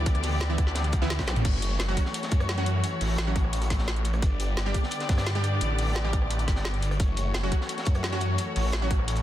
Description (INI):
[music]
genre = dark technical drum and bass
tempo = 173 BPM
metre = 4/4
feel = straight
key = F# phrygian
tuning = A4 = 443 Hz
[part]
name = muted studio string section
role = sustained chords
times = 0.0-9.2 s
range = D3 to D5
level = -33 LUFS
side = left 2 dB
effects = sidechain pumping
[part]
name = snarling distorted saw bass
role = bass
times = 0.0-9.2 s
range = F#1 to G2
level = -27 LUFS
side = equal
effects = distortion, overdrive, sidechain pumping
[part]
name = crunchy breakbeat drum kit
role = drums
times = 0.1-9.2 s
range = hi-hat, snare drum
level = -39 LUFS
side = equal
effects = none
[part]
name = drum and bass drum kit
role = drums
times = 0.1-9.2 s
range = crash cymbal, hi-hat, rim click, snare drum, toms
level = -33 LUFS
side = equal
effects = none
[part]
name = electronic kick drum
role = drums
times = 0.1-9.0 s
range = none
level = -25 LUFS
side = equal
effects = overdrive
[part]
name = orchestra-hit-like synth stab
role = stabs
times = 0.5-8.9 s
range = E3 to G4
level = -35 LUFS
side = right 2 dB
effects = built-in reverb, cassette tape, dub echo
[part]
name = zap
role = sound effects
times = 1.3-1.4 s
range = none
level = -38 LUFS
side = right 1 dB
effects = none
[sound]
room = studio ambience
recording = dense, heavily limited modern master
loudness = -24 LUFS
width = side -13 dB against mid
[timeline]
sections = 0.0-1.4 A section; 1.4-9.2 A section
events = drop 0.0-1.4, 1.4-9.2; drum fill 1.2; band accent 1.3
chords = 0.0 Em7; 1.4 F#m7; 4.2 G; 7.0 F#m7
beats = | 0.06 0.41 0.76 1.10 | 1.45 1.80 2.14 2.49 | 2.84 3.18 3.53 3.88 | 4.22 4.57 4.92 5.26 | 5.61 5.96 6.30 6.65 | 7.00 7.34 7.69 8.04 | 8.39 8.73 9.08